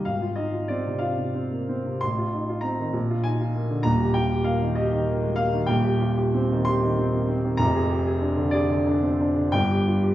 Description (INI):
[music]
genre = classical, romantic character piece for solo piano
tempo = 57-67 BPM (dotted quarters)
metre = 6/8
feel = rubato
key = Eb major, C minor from 5.7 s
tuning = A4 = 440 Hz
[part]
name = warm concert grand piano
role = solo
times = 0.0-10.1 s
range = Eb1 to C6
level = -21 LUFS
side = equal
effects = none
[sound]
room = wet recital hall reverb, RT60 1.5 s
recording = heard from further back in the room, nothing above 8.0 kHz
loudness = -21 LUFS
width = side -14 dB against mid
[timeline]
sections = 0.0-10.1 A section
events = none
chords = 0.1 Fm/Ab; 2.0 F7/A; 3.0 Bb7; 3.9 Eb; 5.7 Cm/Eb; 7.6 Ddim/F; 9.5 G7(no3)